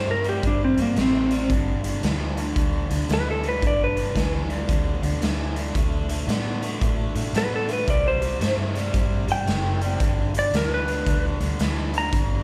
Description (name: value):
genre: electric blues shuffle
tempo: 113 BPM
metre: 4/4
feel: swing 64% on 8ths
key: G major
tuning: A4 = 440 Hz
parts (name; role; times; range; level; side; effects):
- clean lap steel guitar; melody; 0.0-12.3 s; Bb3 to Bb5; -26 LUFS; equal; slapback echo
- raw garage guitar; riff; 0.0-12.4 s; G2 to B3; -32 LUFS; equal; overdrive, slapback echo
- vintage muted fingered electric bass; bass; 0.0-12.4 s; F#1 to A2; -29 LUFS; equal; none
- raw garage drum kit; drums; 0.2-12.3 s; hi-hat, kick drum, snare drum; -28 LUFS; equal; none
room: light reverb, studio ambience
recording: live gig heard through the venue's PA, club reverb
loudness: -23 LUFS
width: mono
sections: 0.0-12.4 A section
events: electric slide guitar solo 0.0-12.4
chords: 0.0 C5; 1.5 G5; 5.7 D5; 7.9 C5; 10.0 G